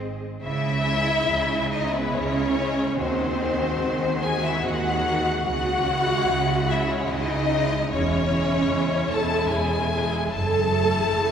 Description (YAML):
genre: classical, slow romantic movement for string orchestra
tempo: 63-78 BPM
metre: 3/4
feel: rubato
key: C# minor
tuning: A4 = 440 Hz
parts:
  - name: warm symphonic violin section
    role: melody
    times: 0.0-11.3 s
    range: B4 to A5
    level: -26 LUFS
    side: left 4 dB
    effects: none
  - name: warm symphonic viola section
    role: accompaniment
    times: 0.0-11.3 s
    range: B3 to A4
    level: -27 LUFS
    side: right 2 dB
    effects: none
  - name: rich symphonic double bass section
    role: bass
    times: 0.0-11.3 s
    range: E1 to D#2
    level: -30 LUFS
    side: right 2 dB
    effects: none
  - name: rich symphonic cello section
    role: bass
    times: 0.4-11.3 s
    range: E2 to D#3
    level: -29 LUFS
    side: right 2 dB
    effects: none
  - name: dark symphonic violin section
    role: second line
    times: 0.9-11.3 s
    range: G#3 to F#4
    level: -31 LUFS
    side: left 2 dB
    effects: none
room: wet cathedral reverb, RT60 4.6 s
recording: recorded in a church or concert hall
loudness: -21 LUFS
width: side -8 dB against mid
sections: 0.4-11.3 A section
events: none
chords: 0.4 C#m; 3.0 G#7/D#; 5.5 C#m; 7.9 C#m/E; 10.3 F#m7